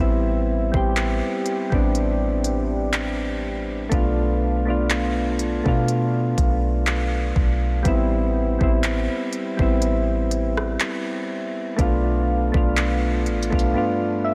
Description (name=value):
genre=contemporary R&B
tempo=61 BPM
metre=4/4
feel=swing 54% on 16ths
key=A minor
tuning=A4 = 440 Hz
part: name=soft electric-piano-like synth keys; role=accompaniment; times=0.0-14.3 s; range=G2 to E5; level=-25 LUFS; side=equal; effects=chorus
part: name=soft 808-style bass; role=bass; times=0.0-13.7 s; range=A1 to B2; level=-26 LUFS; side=equal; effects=none
part: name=smooth R&B drum kit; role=drums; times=0.7-13.7 s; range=handclaps, hi-hat, kick drum, rim click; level=-28 LUFS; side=equal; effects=none
room=moderate huge ambient reverb, RT60 4.9 s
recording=dreamy mix soaked in reverb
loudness=-22 LUFS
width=mono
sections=0.0-14.3 A section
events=synth keys fill 13.8-14.3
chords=0.0 Am9; 3.9 Bm7b5; 7.9 Am9; 11.8 Bm7b5; 13.8 G7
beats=0.97 1.95 2.93 | 3.92 4.90 5.88 6.87 | 7.85 8.84 9.82 10.80 | 11.79 12.77 13.75